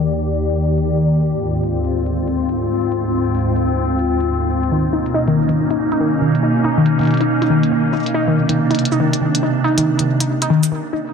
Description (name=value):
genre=IDM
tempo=140 BPM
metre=4/4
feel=swing 62% on 16ths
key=unclear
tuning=A4 = 440 Hz
part: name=glassy FM pad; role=sustained chords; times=0.0-10.7 s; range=D2 to D5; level=-17 LUFS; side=equal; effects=ensemble chorus, built-in reverb
part: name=electronic hi-hat and cabasa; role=drums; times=0.1-10.7 s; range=none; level=-25 LUFS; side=left 1 dB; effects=soft clipping on snare
part: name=warbly dusty pluck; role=arpeggios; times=4.7-11.0 s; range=D#3 to D#4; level=-17 LUFS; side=left 2 dB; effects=chorus, phaser, dub echo
room=moderate echo chamber reverb, RT60 1.5 s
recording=dense, heavily limited modern master, low-pass filter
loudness=-15 LUFS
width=side -6 dB against mid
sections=0.0-11.1 A section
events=filter sweep 0.0-11.1; break 10.7-11.1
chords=0.0 Ebmaj7; 1.3 Dm7b5; 4.7 Bmaj9; 8.1 Cm9